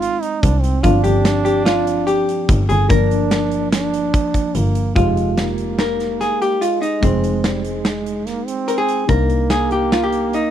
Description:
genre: progressive instrumental, band music in an uneven meter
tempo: 145 BPM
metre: 5/4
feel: straight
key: unclear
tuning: A4 = 440 Hz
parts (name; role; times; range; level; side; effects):
- warm trombone; second line; 0.0-10.5 s; G3 to F4; -23 LUFS; right 5 dB; none
- tine electric piano; accompaniment; 0.0-10.5 s; F3 to Ab4; -24 LUFS; left 2 dB; overdrive, medium stereo tremolo
- big rock drum kit; drums; 0.0-10.4 s; hi-hat, kick drum, snare drum; -21 LUFS; equal; none
- clear double bass; bass; 0.4-10.3 s; F1 to C2; -20 LUFS; equal; none
- vintage hollow-body jazz guitar; melody; 0.8-10.5 s; C4 to Bb4; -19 LUFS; left 1 dB; none
room: little or no reverb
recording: dry, close 1970s-style studio recording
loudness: -15 LUFS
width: side -10 dB against mid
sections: 0.0-5.0 A section; 5.0-10.5 B section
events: none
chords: 0.0 Ab; 0.8 G7sus4; 2.9 Gm7; 5.0 Fm7; 9.1 Cm7

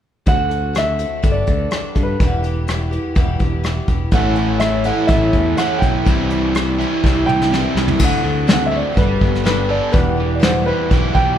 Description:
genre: folk rock and heartland rock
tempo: 124 BPM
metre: 4/4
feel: straight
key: unclear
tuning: A4 = 436 Hz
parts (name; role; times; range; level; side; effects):
- dark grand piano; melody; 0.3-11.4 s; B4 to G5; -22 LUFS; right 1 dB; none
- picked twelve-string acoustic guitar; accompaniment; 0.3-11.4 s; E2 to A4; -23 LUFS; equal; none
- picked electric bass; bass; 0.3-11.3 s; E1 to G2; -22 LUFS; equal; none
- soft brush drum kit; drums; 0.3-11.3 s; crash cymbal, hi-hat, kick drum, rim click, snare drum, toms; -18 LUFS; equal; none
- crunchy overdriven guitar; riff; 4.1-11.4 s; E2 to A4; -21 LUFS; equal; spring reverb
room: moderate church reverb, RT60 2.4 s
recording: recorded in a church or concert hall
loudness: -14 LUFS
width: side -10 dB against mid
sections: 0.3-8.0 A section; 8.0-11.4 B section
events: drum fill 7.0-8.0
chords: 0.3 D7; 1.2 Gadd9; 2.2 Em; 4.1 A6; 6.1 Cadd9; 8.0 D7; 9.0 Gadd9; 9.9 Em

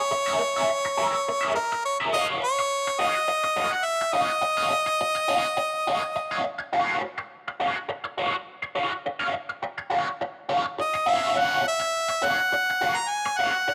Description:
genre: funk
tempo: 104 BPM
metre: 4/4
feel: straight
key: unclear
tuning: A4 = 442 Hz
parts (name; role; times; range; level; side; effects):
- clear harmonica; melody; 0.0-6.4, 10.8-13.7 s; Bb4 to Bb5; -26 LUFS; equal; none
- biting overdriven guitar; accompaniment; 0.1-13.7 s; Gb4 to F5; -29 LUFS; equal; wah, phaser
room: moderate echo chamber reverb, RT60 2.2 s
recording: none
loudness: -25 LUFS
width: mono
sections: 0.0-2.1 A section; 2.1-13.7 B section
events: none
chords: 0.0 Bbm7b5/Ab; 2.1 Ebm9

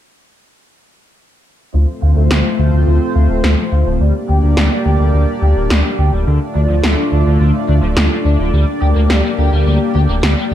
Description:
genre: synthwave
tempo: 106 BPM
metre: 4/4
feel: straight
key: unclear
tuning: A4 = 437 Hz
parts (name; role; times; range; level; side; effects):
- chorused pulse-width pad; sustained chords; 1.7-10.5 s; A3 to D5; -18 LUFS; left 1 dB; none
- overdriven electric guitar; riff; 1.7-10.5 s; D3 to G4; -24 LUFS; equal; analog chorus, low-pass filter, tape echo
- dark detuned saw bass; bass; 1.7-10.5 s; D1 to D2; -13 LUFS; equal; none
- electronic snare drum; drums; 2.3-10.3 s; none; -18 LUFS; equal; none
room: light reverb, digital ambience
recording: dark, warm production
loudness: -12 LUFS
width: side -11 dB against mid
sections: 1.7-10.5 A section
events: filter sweep on overdriven electric guitar 1.7-10.5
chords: 1.7 F/D; 4.0 Gm/D; 6.3 Dm; 8.5 Gm/D

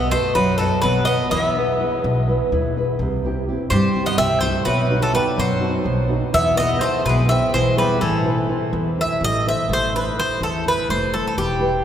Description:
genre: greek folk, Greek bouzouki band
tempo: 251 BPM (eighths)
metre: 7/8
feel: straight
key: A dorian sharp4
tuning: A4 = 440 Hz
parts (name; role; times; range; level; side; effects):
- Greek bouzouki; melody; 0.0-11.8 s; G4 to E5; -21 LUFS; equal; none
- Greek bouzouki; second line; 0.0-8.7 s; E3 to C4; -27 LUFS; equal; none
- nylon-string guitar; accompaniment; 0.0-11.8 s; B2 to D#5; -23 LUFS; equal; none
- upright bass; bass; 0.0-11.8 s; E1 to G2; -23 LUFS; equal; none
room: wet cathedral reverb, RT60 5.6 s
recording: recorded in a church or concert hall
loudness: -17 LUFS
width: side -9 dB against mid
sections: 0.0-9.7 A section; 9.7-11.8 B section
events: none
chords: 0.0 B; 1.3 E; 3.0 C; 4.7 B; 6.3 E; 8.0 Am

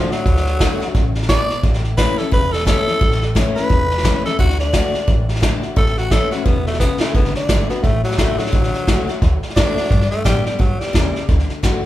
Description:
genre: rockabilly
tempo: 174 BPM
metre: 4/4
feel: swing 60% on 8ths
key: D major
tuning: A4 = 440 Hz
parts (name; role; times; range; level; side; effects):
- growling tenor saxophone; melody; 0.0-11.3 s; F3 to D5; -21 LUFS; equal; none
- picked steel-string acoustic guitar; accompaniment; 0.0-11.8 s; E2 to G4; -24 LUFS; left 4 dB; none
- upright bass; bass; 0.1-11.8 s; E1 to A2; -22 LUFS; equal; none
- vintage brush drum kit; drums; 0.1-11.7 s; hi-hat, kick drum, snare drum; -17 LUFS; equal; none
room: moderate large studio reverb, RT60 1.2 s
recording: band playing live in one room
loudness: -14 LUFS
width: side -14 dB against mid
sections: 0.0-7.1 A section; 7.1-11.9 B section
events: drum fill 6.8-7.1; tenor saxophone solo 7.1-11.9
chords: 0.0 D; 1.6 A; 4.4 D; 5.8 A; 7.1 D; 9.9 G; 11.3 D

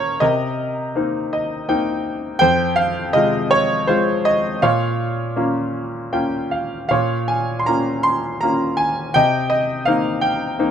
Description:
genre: classical, lyrical solo piano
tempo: 81 BPM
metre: 3/4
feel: rubato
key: unclear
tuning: A4 = 438 Hz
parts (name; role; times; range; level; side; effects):
- bright grand piano; solo; 0.0-10.7 s; F2 to C6; -17 LUFS; equal; none
room: light reverb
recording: close, detailed microphones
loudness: -17 LUFS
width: side -8 dB against mid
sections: 0.0-10.7 A section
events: grand piano fill 1.0-2.4, 5.7-6.9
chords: 0.2 Cm7; 2.4 Fm; 4.6 Bbm; 9.2 Cm7

